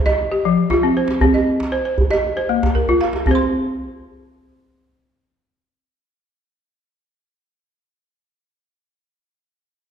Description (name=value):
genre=west african traditional, West African string and xylophone music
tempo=117 BPM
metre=4/4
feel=straight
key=unclear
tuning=A4 = 440 Hz
part: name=balafon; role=arpeggios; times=0.0-8.3 s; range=F3 to C6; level=-17 LUFS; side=left 1 dB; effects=none
part: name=djembe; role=percussion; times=0.1-3.5 s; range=none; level=-20 LUFS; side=right 1 dB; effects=none
room=wet recital hall reverb, RT60 1.5 s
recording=dark, warm production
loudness=-15 LUFS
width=side -8 dB against mid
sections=0.0-3.3 A section; 3.3-7.4 B section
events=drum fill 2.7-3.3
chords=0.2 F5; 1.2 Cm; 2.2 Bb5; 3.3 N.C.